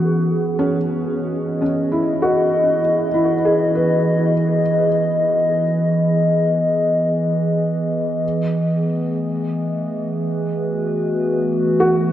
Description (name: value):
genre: ambient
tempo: 59 BPM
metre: 4/4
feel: straight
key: C# minor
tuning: A4 = 440 Hz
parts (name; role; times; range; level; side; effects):
- warbly tape-like pad; sustained chords; 0.0-12.1 s; E3 to D#5; -17 LUFS; equal; chorus, built-in reverb
- felt-muted upright piano; arpeggios; 0.0-12.1 s; C#4 to B4; -21 LUFS; equal; tape echo
room: wet huge ambient reverb, RT60 7.4 s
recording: worn, warbling old tape, cassette tape, warbly pitch drift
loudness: -16 LUFS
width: side -11 dB against mid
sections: 0.0-12.1 A section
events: none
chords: 0.0 C#m7; 8.2 B7sus4